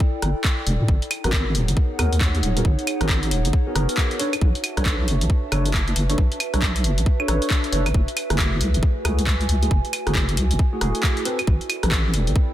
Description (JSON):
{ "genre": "UK garage, two-step garage", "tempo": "136 BPM", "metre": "4/4", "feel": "swing 62% on 16ths", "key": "F# dorian", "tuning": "A4 = 440 Hz", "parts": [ { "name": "electronic kick drum", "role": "drums", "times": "0.0-12.5 s", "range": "none", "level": "-20 LUFS", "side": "equal", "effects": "overdrive" }, { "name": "warbly tape-like pad", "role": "texture", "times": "0.0-12.5 s", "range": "D#4 to A5", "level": "-31 LUFS", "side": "right 2 dB", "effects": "chorus, built-in reverb, sidechain pumping" }, { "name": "deep soft wobble bass", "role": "bass", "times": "0.2-12.3 s", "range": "D#1 to A2", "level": "-21 LUFS", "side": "equal", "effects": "chorus, tube saturation, sidechain pumping" }, { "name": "punchy analog drum machine", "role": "drums", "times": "0.2-12.3 s", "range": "claves, handclaps, hi-hat, rim click", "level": "-26 LUFS", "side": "equal", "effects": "none" }, { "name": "tine electric piano", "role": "stabs", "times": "1.2-12.5 s", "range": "A3 to C#5", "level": "-29 LUFS", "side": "equal", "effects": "overdrive, lush chorus, digital delay" } ], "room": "little or no reverb", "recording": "dense, heavily limited modern master", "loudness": "-19 LUFS", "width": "side -13 dB against mid", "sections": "0.0-12.5 A section", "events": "none", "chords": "0.0 A5; 0.9 G#m9; 4.2 Bm9; 7.9 F#m9; 11.3 Am9", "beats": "0.01 0.45 | 0.89 1.33 1.77 2.21 | 2.65 3.09 3.53 3.98 | 4.42 4.86 5.30 5.74 | 6.18 6.62 7.06 7.50 | 7.95 8.39 8.83 9.27 | 9.71 10.15 10.59 11.03 | 11.47 11.92 12.36" }